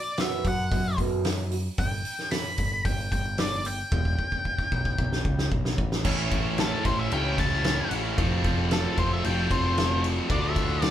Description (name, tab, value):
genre	quiet-loud alternative rock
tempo	113 BPM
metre	4/4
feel	straight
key	unclear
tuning	A4 = 440 Hz
part	octave-fuzz lead guitar	melody	0.0-10.9 s	A4 to B5	-30 LUFS	left 2 dB	distortion
part	electric guitar through a small old amp	arpeggios	0.0-1.8 s	B2 to B3	-32 LUFS	right 5 dB	phaser
part	loose indie drum kit	drums	0.2-10.9 s	crash cymbal, hi-hat, kick drum, ride cymbal, snare drum	-28 LUFS	equal	none
part	growling picked electric bass	bass	0.4-10.9 s	E1 to F#2	-29 LUFS	equal	overdrive
part	distorted electric guitar	riff	6.0-10.9 s	A2 to F4	-28 LUFS	right 1 dB	overdrive
room	moderate studio reverb, RT60 0.6 s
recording	band playing live in one room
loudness	-24 LUFS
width	side -11 dB against mid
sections	0.0-6.1 A section; 6.1-10.9 B section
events	drum fill 3.9-6.1; lead electric guitar solo 6.1-10.9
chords	0.0 B5; 1.8 G; 3.9 Em; 6.1 A; 8.2 F; 10.3 Dm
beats	0.18 0.72 1.25 | 1.79 2.32 2.86 3.39 | 3.93 4.46 4.99 5.53 | 6.06 6.59 7.12 7.65 | 8.18 8.71 9.24 9.77 | 10.30 10.83